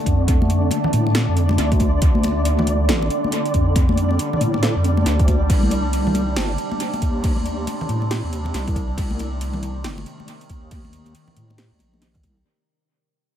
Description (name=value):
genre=deep dubstep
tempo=138 BPM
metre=4/4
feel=swing 61% on 16ths, half-time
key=unclear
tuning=A4 = 440 Hz
part: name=overtone-sweeping drone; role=sustained chords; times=0.0-12.4 s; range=C3 to D4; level=-26 LUFS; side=right 1 dB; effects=chorus, built-in reverb
part: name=flickering grainy texture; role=texture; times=0.1-12.5 s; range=D4 to D5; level=-29 LUFS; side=left 1 dB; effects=built-in reverb
part: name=deep soft wobble bass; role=bass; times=0.1-12.4 s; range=G1 to A2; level=-20 LUFS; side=equal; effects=chorus
part: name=deep house drum kit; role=drums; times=0.1-12.3 s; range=crash cymbal, hi-hat, snare drum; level=-28 LUFS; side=equal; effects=overdrive, dub echo
part: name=electronic kick drum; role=drums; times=0.1-12.3 s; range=none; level=-19 LUFS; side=equal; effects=overdrive
part: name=congas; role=percussion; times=0.3-12.3 s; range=none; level=-27 LUFS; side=left 3 dB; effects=dub echo
part: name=filtered dub chord stab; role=stabs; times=1.1-11.7 s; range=C4 to A4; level=-32 LUFS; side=right 2 dB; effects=phaser, cassette tape, dub echo
room=little or no reverb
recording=echo-heavy mix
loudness=-17 LUFS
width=side -10 dB against mid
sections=0.0-12.5 A section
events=drop 0.0-12.5; fade-out 5.5-12.5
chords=0.0 Dm; 5.5 Cm